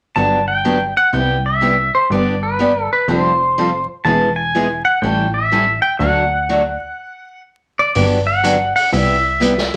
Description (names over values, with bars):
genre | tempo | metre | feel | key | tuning
country, western swing | 123 BPM | 4/4 | swing 66% on 8ths | G major | A4 = 440 Hz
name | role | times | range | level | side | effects
pedal steel guitar | melody | 0.2-9.8 s | B4 to A5 | -18 LUFS | equal | none
picked steel-string acoustic guitar | accompaniment | 0.2-9.5 s | C3 to A4 | -21 LUFS | equal | none
plucky analog bass | bass | 0.2-9.7 s | E1 to D2 | -24 LUFS | equal | none
vintage drum kit | drums | 7.9-9.8 s | hi-hat, snare drum | -26 LUFS | equal | none
room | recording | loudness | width
wet studio reverb, RT60 0.5 s | vinyl crackle | -16 LUFS | mono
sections
0.2-7.9 A section; 7.9-9.8 B section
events
stop 7.0-7.9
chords
0.2 Gmaj7; 1.1 Cmaj7; 2.1 G; 3.1 Fadd9; 4.1 E; 5.0 A7; 6.0 D; 7.9 Gmaj7; 8.9 Cmaj7